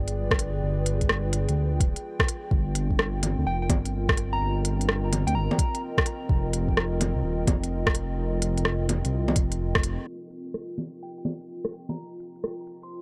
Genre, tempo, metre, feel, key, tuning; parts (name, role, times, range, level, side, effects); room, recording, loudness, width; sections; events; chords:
future garage; 127 BPM; 4/4; swing 66% on 16ths; C minor; A4 = 440 Hz
dark analog pad; sustained chords; 0.0-13.0 s; C4 to G5; -36 LUFS; equal; chorus, sidechain pumping
dark detuned saw bass; bass; 0.0-10.0 s; D1 to D2; -29 LUFS; equal; sidechain pumping
organic electronic drum kit; drums; 0.1-12.9 s; bongos, hi-hat, rim click; -29 LUFS; equal
electronic kick drum; drums; 0.3-9.8 s; -28 LUFS; equal
soft struck synth lead; melody; 3.5-5.8, 11.0-13.0 s; G5 to C6; -38 LUFS; equal; chorus, dub echo
little or no reverb; dark, warm production, low-pass filter; -26 LUFS; mono
0.0-10.1 A section; 10.1-13.0 B section
band accent 9.7; filter sweep 10.1-13.0
0.0 G7b9; 2.5 Cm7; 6.3 F5; 10.1 Cm7